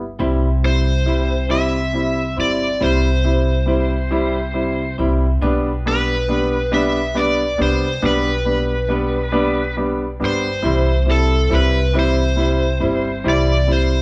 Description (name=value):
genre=six-eight pop ballad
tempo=46 BPM (dotted quarters)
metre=6/8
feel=straight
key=C major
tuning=A4 = 440 Hz
part: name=upright bass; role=bass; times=0.0-14.0 s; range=G1 to C2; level=-22 LUFS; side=equal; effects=none
part: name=warm grand piano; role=accompaniment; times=0.2-13.9 s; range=G3 to E4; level=-22 LUFS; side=equal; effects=none
part: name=clean electric guitar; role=arpeggios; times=0.2-14.0 s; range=C3 to C5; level=-32 LUFS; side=equal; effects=none
part: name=overdriven slide guitar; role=melody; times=0.7-14.0 s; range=A4 to E5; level=-24 LUFS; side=equal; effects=none
room=moderate large studio reverb, RT60 1.1 s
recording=band playing live in one room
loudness=-18 LUFS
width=mono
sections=0.2-10.6 A section; 10.6-14.0 B section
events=none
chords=0.2 C; 5.4 G/B; 10.6 C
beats=| 0.20 1.50 | 2.81 4.12 | 5.42 6.73 | 8.03 9.34 | 10.64 11.95 | 13.26